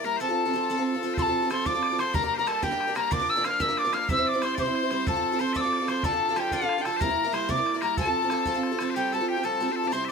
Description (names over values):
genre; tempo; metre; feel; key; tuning
celtic folk, Celtic jig; 124 BPM (dotted quarters); 6/8; straight; F major; A4 = 441 Hz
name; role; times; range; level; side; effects
loud bright bagpipes; second line; 0.0-10.1 s; F4 to F5; -32 LUFS; left 7 dB; none
picked twelve-string acoustic guitar; accompaniment; 0.0-10.1 s; G2 to C5; -29 LUFS; right 3 dB; none
mellow tin whistle; melody; 0.1-10.1 s; F5 to F6; -27 LUFS; left 1 dB; none
bodhran; percussion; 1.2-8.9 s; none; -34 LUFS; right 2 dB; none
room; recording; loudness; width
light reverb; none; -23 LUFS; side -5 dB against mid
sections
0.0-1.2 A section; 1.2-8.9 A section; 8.9-10.1 B section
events
none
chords
0.2 F; 2.1 Gm; 3.1 Bb; 4.1 C; 5.1 F; 6.0 Dm; 7.0 C7; 8.0 F; 8.9 Fadd9